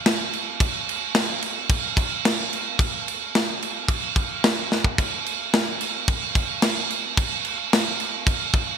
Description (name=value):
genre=metal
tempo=110 BPM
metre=4/4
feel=straight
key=none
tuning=none
part: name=tight metal drum kit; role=drums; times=0.1-8.7 s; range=crash cymbal, kick drum, snare drum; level=-21 LUFS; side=equal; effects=none
room=light reverb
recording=bright 1980s-style digital production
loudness=-21 LUFS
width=side -7 dB against mid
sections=0.0-8.8 A section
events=drum fill 4.7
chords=none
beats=0.06 | 0.61 1.15 1.70 2.25 | 2.79 3.34 3.89 4.44 | 4.99 5.53 6.08 6.63 | 7.17 7.72 8.27